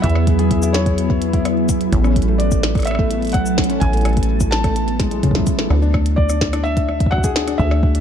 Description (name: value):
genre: IDM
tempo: 127 BPM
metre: 4/4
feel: straight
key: D lydian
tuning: A4 = 442 Hz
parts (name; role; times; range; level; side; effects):
- felt-muted upright piano; melody; 0.0-8.0 s; C#5 to A5; -25 LUFS; equal; digital delay
- glassy FM pad; sustained chords; 0.0-5.7 s; F#3 to A4; -22 LUFS; equal; ensemble chorus, built-in reverb
- felt-muted upright piano; arpeggios; 0.0-8.0 s; G#3 to G#4; -24 LUFS; left 4 dB; ping-pong delay
- deep acid bass; bass; 0.0-8.0 s; A1 to E2; -19 LUFS; equal; none
- electronic kick drum; drums; 0.0-7.9 s; none; -19 LUFS; equal; none
- glitchy drum kit; drums; 0.0-8.0 s; cabasa, hi-hat, rim click, snare drum, toms; -25 LUFS; left 1 dB; none
room: little or no reverb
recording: dark, warm production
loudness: -15 LUFS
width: side -8 dB against mid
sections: 0.0-5.7 A section; 5.7-8.0 A section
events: drum fill 5.0-5.7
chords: 0.0 E; 1.9 Amaj7; 5.7 Dadd9